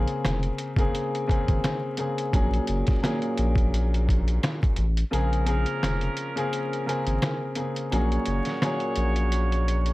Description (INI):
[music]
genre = hip hop, boom-bap hip-hop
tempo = 86 BPM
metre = 4/4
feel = swing 55% on 16ths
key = Bb minor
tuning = A4 = 440 Hz
[part]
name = warm upright piano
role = accompaniment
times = 0.0-9.9 s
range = Bb2 to Ab4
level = -28 LUFS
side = left 1 dB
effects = cassette tape, high-pass filter, low-pass filter
[part]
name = saturated sub bass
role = bass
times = 0.0-9.9 s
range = F1 to Bb1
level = -24 LUFS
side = equal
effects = none
[part]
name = trip hop sampler-style drum kit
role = drums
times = 0.1-9.9 s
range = hi-hat, kick drum, snare drum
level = -26 LUFS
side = equal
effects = none
[part]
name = dark horn section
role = stabs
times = 5.1-9.9 s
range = F3 to Db5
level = -32 LUFS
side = right 3 dB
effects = high-pass filter, low-pass filter, analog delay
[sound]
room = little or no reverb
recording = dark, warm production, vinyl crackle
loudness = -23 LUFS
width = side -19 dB against mid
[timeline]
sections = 0.0-5.1 A section; 5.1-9.9 B section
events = kick muted 5.1-9.9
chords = 0.0 Bbm9; 2.3 Ab9sus4; 5.1 Bbm9; 7.9 Ab9sus4